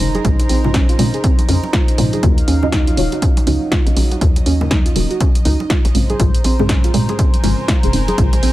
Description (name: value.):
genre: deep house.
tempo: 121 BPM.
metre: 4/4.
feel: swing 60% on 16ths.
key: Eb minor.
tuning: A4 = 439 Hz.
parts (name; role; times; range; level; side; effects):
warm analog pad; sustained chords; 0.0-8.5 s; Gb3 to Bb5; -26 LUFS; right 2 dB; chorus, sidechain pumping.
deep mellow chord stab; stabs; 0.0-8.5 s; Ab3 to Eb5; -21 LUFS; equal; chorus, phaser, sidechain pumping, digital delay.
hollow knocking FM bass; bass; 0.0-8.5 s; Eb1 to Bb2; -18 LUFS; equal; sidechain pumping.
punchy analog drum machine; drums; 0.0-8.5 s; hi-hat, snare drum; -23 LUFS; equal; none.
dark chamber string section; texture; 0.0-8.5 s; Gb3 to Ab5; -33 LUFS; right 2 dB; sidechain pumping.
soft round pluck; arpeggios; 0.1-8.5 s; C4 to Ab4; -24 LUFS; right 3 dB; chorus, sidechain pumping, tape echo.
congas; percussion; 0.1-8.4 s; none; -28 LUFS; right 2 dB; overdrive.
electronic kick drum; drums; 0.2-8.3 s; none; -15 LUFS; equal; none.
room: little or no reverb.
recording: none.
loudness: -13 LUFS.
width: side -16 dB against mid.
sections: 0.0-8.5 A section.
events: fade-in on string section 0.0-8.5; filter sweep on synth stab 0.0-8.5.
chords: 0.0 Bbm9; 2.2 Ebm9; 5.9 Bbm9.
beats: | 0.25 0.74 1.24 1.73 | 2.23 2.73 3.22 3.72 | 4.21 4.71 5.21 5.70 | 6.20 6.69 7.19 7.68 | 8.18.